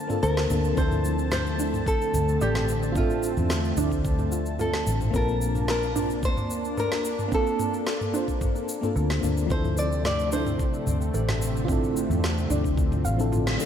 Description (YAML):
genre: sunset chillout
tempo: 110 BPM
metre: 4/4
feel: straight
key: D minor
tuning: A4 = 440 Hz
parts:
  - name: mellow FM electric piano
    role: accompaniment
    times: 0.0-13.7 s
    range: F3 to A5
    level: -31 LUFS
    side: moving between left 6 dB and right 8 dB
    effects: chorus, tremolo, auto-pan, ping-pong delay
  - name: lush unison pad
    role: sustained chords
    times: 0.0-13.7 s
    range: C3 to A5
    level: -31 LUFS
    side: left 1 dB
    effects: chorus
  - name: smooth R&B drum kit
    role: drums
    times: 0.1-13.7 s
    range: cabasa, snare drum, toms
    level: -32 LUFS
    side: equal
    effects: none
  - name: nylon-string guitar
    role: melody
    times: 0.2-13.3 s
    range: F4 to D5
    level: -30 LUFS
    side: left 1 dB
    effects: diffuse ambient delay
  - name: soft round pluck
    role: arpeggios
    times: 0.2-13.5 s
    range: C4 to F5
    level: -35 LUFS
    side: right 3 dB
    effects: wide subtle chorus, ping-pong delay
  - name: vintage muted fingered electric bass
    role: bass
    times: 0.2-13.6 s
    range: A1 to E2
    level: -27 LUFS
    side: equal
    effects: none
  - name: electronic kick drum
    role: drums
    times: 0.8-12.9 s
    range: none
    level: -27 LUFS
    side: equal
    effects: none
room: moderate plate reverb, RT60 2.7 s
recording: dreamy mix soaked in reverb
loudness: -23 LUFS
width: side -9 dB against mid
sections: 0.0-13.7 A section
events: band accent 13.5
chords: 0.0 Bbmaj9; 0.8 Dm7; 5.1 Bbmaj9; 9.5 Dm7